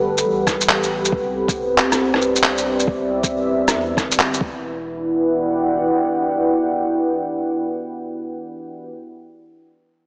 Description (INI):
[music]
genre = future garage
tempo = 137 BPM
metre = 4/4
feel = swing 64% on 16ths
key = E minor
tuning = A4 = 440 Hz
[part]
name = dark analog pad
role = sustained chords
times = 0.0-8.9 s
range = G3 to G5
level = -19 LUFS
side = equal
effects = chorus, sidechain pumping
[part]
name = warm sub bass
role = bass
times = 0.0-5.9 s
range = E1 to E2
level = -34 LUFS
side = equal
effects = sidechain pumping
[part]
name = electronic shaker, rim click and handclaps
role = drums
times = 0.2-4.4 s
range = none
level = -18 LUFS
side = equal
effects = none
[part]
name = electronic kick drum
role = drums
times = 0.5-4.5 s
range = none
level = -24 LUFS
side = equal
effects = none
[sound]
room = wet lush hall reverb, RT60 1.8 s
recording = heavily compressed radio sound, small speaker sound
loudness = -17 LUFS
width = side -28 dB against mid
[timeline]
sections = 0.0-4.6 A section; 4.6-8.1 B section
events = none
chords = 0.0 Gmaj7; 1.1 Cmaj7; 4.4 E5; 4.6 Em7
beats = 0.25 0.69 | 1.12 1.56 2.00 2.44 | 2.88 3.31 3.75 4.19 | 4.63 5.07 5.50 5.94 | 6.38 6.82 7.25 7.69